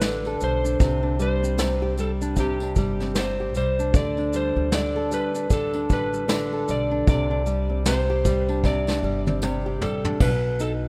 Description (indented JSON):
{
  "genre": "acoustic pop",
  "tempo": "76 BPM",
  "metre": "4/4",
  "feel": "swing 60% on 16ths",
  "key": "unclear",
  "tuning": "A4 = 438 Hz",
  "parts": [
    { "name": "electric slide guitar", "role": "melody", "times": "0.0-10.7 s", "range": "G4 to D5", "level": "-30 LUFS", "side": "equal", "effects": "delay" },
    { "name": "nylon-string guitar", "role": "accompaniment", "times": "0.0-10.9 s", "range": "B2 to A4", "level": "-29 LUFS", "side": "equal", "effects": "none" },
    { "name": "upright bass", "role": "bass", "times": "0.0-10.9 s", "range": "G1 to D2", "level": "-30 LUFS", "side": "equal", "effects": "none" },
    { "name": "vintage brush drum kit", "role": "drums", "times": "0.0-10.8 s", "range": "crash cymbal, kick drum, shaker, snare drum, toms", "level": "-26 LUFS", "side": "equal", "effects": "none" },
    { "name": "tambourine", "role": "percussion", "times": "0.0-10.8 s", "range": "none", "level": "-47 LUFS", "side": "equal", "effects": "none" }
  ],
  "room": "studio reverb",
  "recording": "rough home demo mix",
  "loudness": "-23 LUFS",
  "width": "mono",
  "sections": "0.0-10.2 A section",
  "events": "drum fill 8.6-10.2",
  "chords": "0.0 Dsus4; 0.8 Csus2; 3.9 Dsus4; 7.1 Csus2; 10.2 B"
}